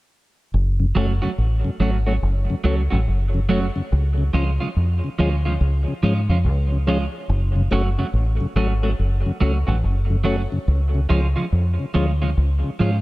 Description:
reggae; 71 BPM; 4/4; swing 63% on 16ths; F# harmonic minor; A4 = 440 Hz
deep dub fingered electric bass; bass; 0.5-13.0 s; F#1 to G#2; -19 LUFS; equal
mellow tonewheel organ; accompaniment; 0.8-12.9 s; F#2 to C#4; -26 LUFS; left 2 dB; overdrive, chorus vibrato, slow rotary speaker, dub echo
clean electric guitar; accompaniment; 1.0-13.0 s; E#3 to F#4; -26 LUFS; right 3 dB; lush chorus, dub echo
little or no reverb; dark, warm production; -18 LUFS; side -19 dB against mid
0.5-13.0 A section
0.5 F#m; 3.9 C#; 7.3 F#m; 10.7 C#

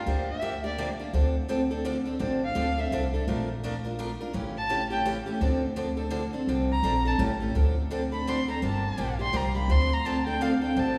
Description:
acoustic string swing (jazz manouche); 168 BPM; 3/4; swing 60% on 8ths; D minor; A4 = 441 Hz
warm violin; melody; 0.0-11.0 s; D5 to C6; -33 LUFS; equal
picked steel-string acoustic guitar; accompaniment; 0.0-11.0 s; C#3 to Bb4; -31 LUFS; equal
upright bass; bass; 0.1-11.0 s; G1 to D2; -32 LUFS; equal
wet concert hall reverb, RT60 1.9 s; recorded in a church or concert hall, small room ambience; -28 LUFS; mono
0.0-7.6 A section; 7.6-11.0 A section
violin solo 0.0-11.0
0.0 Gm7; 1.1 Dm7; 3.3 Bbmaj7; 4.3 A7; 5.4 Dm7; 7.2 A7; 7.6 Dm7; 8.6 Gm9; 9.7 Dm7

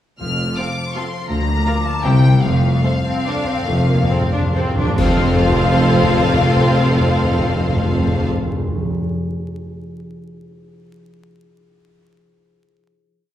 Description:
classical, orchestral ballroom waltz; 132-179 BPM; 3/4; rubato; F major; A4 = 440 Hz
rich symphonic violin section; melody; 0.2-8.3 s; F5 to F6; -24 LUFS; left 5 dB
concert harp; arpeggios; 0.2-9.1 s; C3 to C6; -24 LUFS; left 4 dB
clear symphonic double bass section; bass; 0.2-8.3 s; F1 to D2; -21 LUFS; equal
mellow tuba; bass; 0.2-8.3 s; F1 to D2; -22 LUFS; equal
rich symphonic cello section; bass; 0.2-8.3 s; C2 to F2; -24 LUFS; equal
timpani; percussion; 0.2-9.0 s; F2; -22 LUFS; equal
clear symphonic violin section; second line; 0.6-8.3 s; G4 to F5; -25 LUFS; equal
rich symphonic viola section; accompaniment; 0.6-8.3 s; A3 to F4; -23 LUFS; right 1 dB
cymbal swell, clash cymbals and concert bass drum; percussion; 2.4-5.8 s; -26 LUFS; equal
wet recital hall reverb, RT60 1.5 s; recorded in a church or concert hall, vinyl crackle; -15 LUFS; side -11 dB against mid
0.2-5.0 A section; 5.0-7.5 final chord
slowing down 1.9-5.0; timpani fill 2.4-5.0; band accent 5.0-5.4
0.2 F; 1.3 Bb/D; 2.0 C; 2.4 F

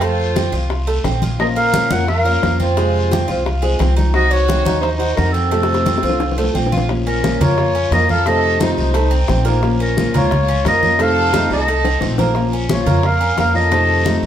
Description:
latin, Cuban son and guajira; 175 BPM; 4/4; straight; Bb harmonic minor from 6.9 s; A4 = 440 Hz
warm clarinet; melody; 0.0-14.2 s; A4 to Gb5; -19 LUFS; equal
warm studio violin section; second line; 0.0-14.2 s; C4 to Bb4; -25 LUFS; equal
Cuban tres; arpeggios; 0.0-14.3 s; Ab3 to Bb4; -23 LUFS; right 4 dB
upright bass; bass; 0.0-14.3 s; Bb1 to F2; -19 LUFS; equal
bongos; percussion; 0.0-14.3 s; -26 LUFS; left 4 dB
congas; percussion; 0.0-14.3 s; -23 LUFS; equal
guiro; percussion; 0.0-14.3 s; -33 LUFS; left 1 dB
nylon-string guitar; accompaniment; 1.4-14.3 s; C3 to Gb4; -23 LUFS; left 3 dB
wet studio reverb, RT60 1.0 s; heard from further back in the room; -14 LUFS; side -10 dB against mid
0.0-6.9 A section; 6.9-14.3 B section
drum fill 5.5-6.9, 11.3-12.4
0.0 F; 1.4 Bbm; 2.8 Fm; 4.1 Cdim; 5.5 F; 6.9 Bbm; 8.3 F7; 9.6 Bbm; 11.0 F7; 12.4 Bbm; 13.7 F7

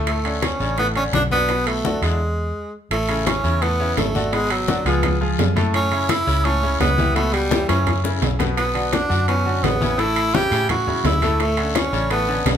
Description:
latin, salsa; 170 BPM; 4/4; straight; A major; A4 = 440 Hz
bright grand piano; accompaniment; 0.0-12.6 s; A2 to B4; -25 LUFS; left 2 dB
vintage muted fingered electric bass; bass; 0.0-12.6 s; G#1 to A2; -23 LUFS; equal
bright tenor saxophone; melody; 0.1-12.5 s; F#3 to G4; -22 LUFS; right 2 dB
bongos; percussion; 0.1-12.6 s; -29 LUFS; left 6 dB
congas; percussion; 0.1-12.6 s; -26 LUFS; left 3 dB
guiro; percussion; 0.1-12.6 s; -34 LUFS; left 7 dB
timbales; percussion; 0.1-12.6 s; -27 LUFS; right 6 dB
moderate studio reverb, RT60 0.6 s; minimal, uncompressed stereo recording; -17 LUFS; side -9 dB against mid
0.0-2.9 A section; 2.9-12.6 A section
stop 2.2-2.9; drum fill 7.5-8.6
0.1 Dmaj7(no3); 1.5 Bm7; 2.2 E; 2.9 Amaj9; 4.3 G#m7b5; 5.0 C#; 5.7 F#m7; 7.2 C#m7b5; 7.9 F#5; 8.6 Bm9; 10.0 A6; 11.4 Dmaj7(no3)

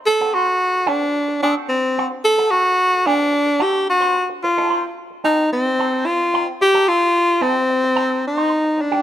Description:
disco; 110 BPM; 4/4; straight; A4 = 436 Hz
breathy tenor saxophone; melody; 0.1-9.0 s; C4 to A4; -16 LUFS; equal
electric guitar with an envelope filter; accompaniment; 0.1-9.0 s; C4 to C5; -25 LUFS; right 4 dB; wah, warbly pitch drift
moderate plate reverb, RT60 2.7 s; -15 LUFS; side -11 dB against mid
0.0-8.8 A section
0.1 D7; 4.4 F7

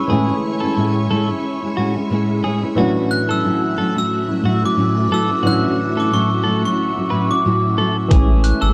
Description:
indie pop, bedroom pop; 90 BPM; 4/4; swing 55% on 16ths; A4 = 436 Hz
glockenspiel with brass mallets; melody; 0.0-8.7 s; C#6 to F#6; -25 LUFS; equal; lush chorus, analog delay
nylon-string guitar; accompaniment; 0.0-8.7 s; A2 to E4; -22 LUFS; equal; ensemble chorus, warbly pitch drift
warm upright piano; accompaniment; 0.0-8.7 s; A2 to G#5; -26 LUFS; equal; cassette tape
string machine, full ensemble; sustained chords; 0.0-8.7 s; A3 to C#6; -29 LUFS; equal; ensemble chorus
clean electric guitar; second line; 0.1-8.7 s; F#4 to B4; -29 LUFS; equal; analog chorus, analog delay
warm sub bass; bass; 8.1-8.7 s; G#1 to A1; -18 LUFS; equal
lo-fi sampler-style drum kit; drums; 8.1-8.6 s; hi-hat, kick drum; -16 LUFS; equal; vintage 12-bit sampler grit
light reverb, small room reverb; dark, warm production; -18 LUFS; mono
0.0-8.7 A section
0.0 Amaj7; 2.8 Dmaj9/A; 8.1 Amaj7

